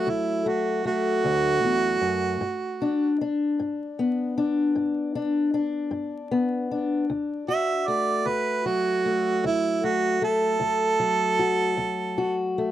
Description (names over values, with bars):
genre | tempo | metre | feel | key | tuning
acoustic country blues, solo or duo | 51 BPM (dotted quarters) | 12/8 | straight | D major | A4 = 441 Hz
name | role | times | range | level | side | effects
mellow harmonica | melody | 0.0-12.5 s | E4 to E5 | -24 LUFS | right 4 dB | none
fingerpicked steel-string acoustic guitar | accompaniment | 0.0-12.7 s | D2 to F#4 | -25 LUFS | left 3 dB | none
room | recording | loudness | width
little or no reverb | dry, close 1970s-style studio recording, vinyl crackle | -22 LUFS | side -12 dB against mid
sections
0.0-12.7 A section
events
harmonica solo 0.0-12.7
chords
0.0 D; 2.4 G; 7.1 D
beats
0.07 1.24 | 2.41 3.58 4.75 5.92 | 7.09 8.27 9.44 10.61 | 11.79